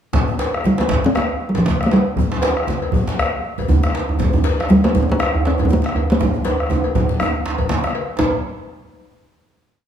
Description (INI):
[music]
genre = west african traditional, West African drum ensemble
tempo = 120 BPM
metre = 4/4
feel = swing 56% on 16ths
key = unclear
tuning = A4 = 440 Hz
[part]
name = bombo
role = percussion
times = 0.1-8.4 s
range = none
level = -23 LUFS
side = left 2 dB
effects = none
[part]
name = congas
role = percussion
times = 0.1-8.4 s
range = none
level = -25 LUFS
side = right 3 dB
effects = none
[part]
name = djembe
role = percussion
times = 0.1-8.4 s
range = none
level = -26 LUFS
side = left 4 dB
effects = none
[part]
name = djembe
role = percussion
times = 0.1-8.4 s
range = none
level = -20 LUFS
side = right 2 dB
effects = none
[part]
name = cowbell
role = percussion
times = 0.4-8.4 s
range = none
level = -28 LUFS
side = left 7 dB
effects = none
[part]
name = talking drum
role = melody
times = 0.7-8.4 s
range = F3 to Eb4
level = -18 LUFS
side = equal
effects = none
[sound]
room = moderate recital hall reverb, RT60 1.6 s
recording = none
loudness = -16 LUFS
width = side -9 dB against mid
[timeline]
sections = 0.1-8.2 A section; 8.2-9.9 final note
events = drum fill 6.2-8.2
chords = none